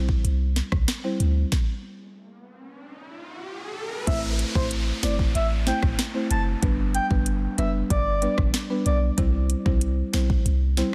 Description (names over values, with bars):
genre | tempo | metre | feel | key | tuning
dancehall | 94 BPM | 4/4 | straight | unclear | A4 = 440 Hz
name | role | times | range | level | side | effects
buzzing marimba with medium mallets | accompaniment | 0.0-10.9 s | G3 to C5 | -32 LUFS | equal | sidechain pumping
clean 808-style bass | bass | 0.0-10.8 s | F#1 to D2 | -26 LUFS | equal | none
afro-pop drum kit | drums | 0.1-10.9 s | hi-hat, kick drum, rim click, snare drum | -27 LUFS | equal | none
riser and downlifter | sound effects | 2.3-9.2 s | none | -38 LUFS | equal | none
breathy flute-like synth lead | melody | 4.1-9.0 s | C5 to A5 | -32 LUFS | equal | chorus, delay
room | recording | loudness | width
digital ambience | dense, heavily limited modern master | -24 LUFS | mono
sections
0.0-4.1 A section; 4.1-10.9 B section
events
stop 1.5-4.1; riser 2.3-4.1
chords
0.0 C; 1.5 N.C.; 4.1 Am; 6.6 G; 9.2 C